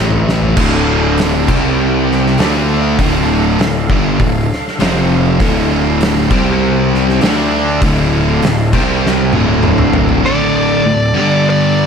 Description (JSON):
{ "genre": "stoner and doom metal", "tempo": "99 BPM", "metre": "4/4", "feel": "straight", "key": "D minor", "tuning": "A4 = 440 Hz", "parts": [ { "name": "percussive tonewheel organ", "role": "sustained chords", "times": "0.0-11.9 s", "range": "G3 to G5", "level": "-24 LUFS", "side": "equal", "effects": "chorus vibrato, slow rotary speaker" }, { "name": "thick fuzz guitar", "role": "riff", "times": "0.0-11.9 s", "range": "D2 to D4", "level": "-18 LUFS", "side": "left 10 dB", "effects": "distortion" }, { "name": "thick fuzz guitar", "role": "riff", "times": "0.0-11.9 s", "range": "D2 to D4", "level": "-17 LUFS", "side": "right 10 dB", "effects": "distortion" }, { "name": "fuzz picked electric bass", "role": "bass", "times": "0.0-10.2 s", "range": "D1 to D2", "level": "-17 LUFS", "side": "equal", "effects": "overdrive" }, { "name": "oversized low-tuned drum kit", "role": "drums", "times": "0.1-10.2 s", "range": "crash cymbal, hi-hat, kick drum, snare drum, toms", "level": "-17 LUFS", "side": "equal", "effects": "none" }, { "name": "biting overdriven guitar", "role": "riff", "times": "0.6-11.9 s", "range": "D2 to D4", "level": "-19 LUFS", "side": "equal", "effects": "none" }, { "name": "fuzz lead guitar", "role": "melody", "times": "10.3-11.9 s", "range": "D5", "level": "-16 LUFS", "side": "equal", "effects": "distortion, tape echo" } ], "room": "moderate large studio reverb, RT60 1.3 s, small room ambience", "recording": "none", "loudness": "-10 LUFS", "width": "side -6 dB against mid", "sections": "0.6-10.2 A section; 10.2-11.9 B section", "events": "drum fill 0.0-0.6, 9.0-10.2", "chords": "0.0 A5; 0.6 Dm; 1.5 C5; 2.4 Dm; 4.8 F5; 5.4 Dm; 6.3 C5; 7.2 Dm; 8.7 C5; 9.3 Dm; 10.2 D5; 11.1 G5" }